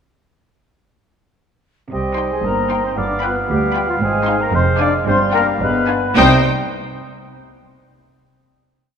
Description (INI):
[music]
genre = cinematic, playful, whimsical film cue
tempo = 113 BPM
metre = 2/4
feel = uneven beats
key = C minor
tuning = A4 = 440 Hz
[part]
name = large flute ensemble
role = second line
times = 1.9-6.5 s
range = C5 to D6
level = -24 LUFS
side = left 3 dB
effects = none
[part]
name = warm clarinet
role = second line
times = 1.9-6.4 s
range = F4 to D5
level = -23 LUFS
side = left 2 dB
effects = none
[part]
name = warm oboe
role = second line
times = 1.9-6.4 s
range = Eb5 to F5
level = -24 LUFS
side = right 1 dB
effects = none
[part]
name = warm bassoon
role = accompaniment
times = 1.9-6.4 s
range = G3 to C4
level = -24 LUFS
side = right 2 dB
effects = none
[part]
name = warm French horn section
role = sustained chords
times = 1.9-6.4 s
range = F3 to D4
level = -24 LUFS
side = left 4 dB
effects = none
[part]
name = rich studio double bass section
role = bass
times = 1.9-6.5 s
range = F1 to D2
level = -24 LUFS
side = right 4 dB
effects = none
[part]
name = rich symphonic cello section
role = bass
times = 1.9-6.5 s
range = D2 to C3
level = -22 LUFS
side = right 3 dB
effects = none
[part]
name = rich studio violin section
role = melody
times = 2.2-6.5 s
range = G5 to C6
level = -23 LUFS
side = left 5 dB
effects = none
[part]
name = rich studio violin section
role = second line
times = 2.2-6.5 s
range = C5 to G5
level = -27 LUFS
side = left 2 dB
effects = none
[part]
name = clear studio viola section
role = accompaniment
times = 2.2-6.5 s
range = D4 to F4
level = -27 LUFS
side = right 1 dB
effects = none
[sound]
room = wet concert hall reverb, RT60 2.4 s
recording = none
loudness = -14 LUFS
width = side -7 dB against mid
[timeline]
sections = 1.9-6.2 A section; 6.2-7.3 final chord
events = none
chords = 1.9 Cm; 3.0 G7; 4.0 Ab6; 4.5 Ddim/F; 5.1 G7sus4; 5.6 G7b9; 6.2 Cm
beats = | 1.92 2.45 | 2.98 3.49 | 4.01 4.53 | 5.06 5.61 | 6.16